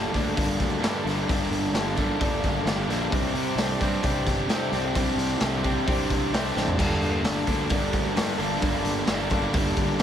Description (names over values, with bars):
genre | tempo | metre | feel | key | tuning
quiet-loud alternative rock | 131 BPM | 4/4 | straight | G minor | A4 = 439 Hz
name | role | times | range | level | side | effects
electric guitar through a small old amp | arpeggios | 0.0-10.0 s | G2 to A4 | -30 LUFS | left 1 dB | wide subtle chorus
fuzz guitar | riff | 0.0-10.0 s | G2 to D4 | -27 LUFS | equal | distortion
fuzz fingered electric bass | bass | 0.0-10.0 s | G1 to C3 | -31 LUFS | equal | overdrive
raw garage drum kit | drums | 0.1-10.0 s | crash cymbal, hi-hat, kick drum, snare drum, toms | -27 LUFS | equal | none
room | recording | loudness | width
light reverb | none | -22 LUFS | side -9 dB against mid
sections
0.0-10.0 A section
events
drum fill 6.6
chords
0.0 Gmadd9; 3.1 Csus2; 6.8 Gmadd9